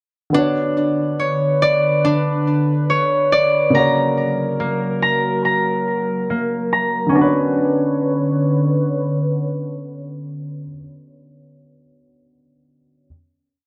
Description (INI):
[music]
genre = hip hop, trap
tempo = 141 BPM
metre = 4/4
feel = half-time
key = B harmonic minor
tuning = A4 = 442 Hz
[part]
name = dark baby grand piano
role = accompaniment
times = 0.3-13.1 s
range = C#3 to C#5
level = -25 LUFS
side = equal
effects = none
[part]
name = warbly tape-like pad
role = sustained chords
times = 0.8-10.7 s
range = D3 to C#5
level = -24 LUFS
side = equal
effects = chorus, built-in reverb, phaser
[part]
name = concert harp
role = arpeggios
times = 0.3-10.8 s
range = A#3 to A#5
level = -21 LUFS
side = equal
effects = digital delay
[sound]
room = light reverb, small room ambience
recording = dark, warm production, low-pass filter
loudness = -18 LUFS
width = mono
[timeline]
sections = 0.3-7.2 breakdown; 7.2-10.6 final chord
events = filter sweep 0.3-7.2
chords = 0.3 Bmadd9; 3.7 F#; 7.2 Bmadd9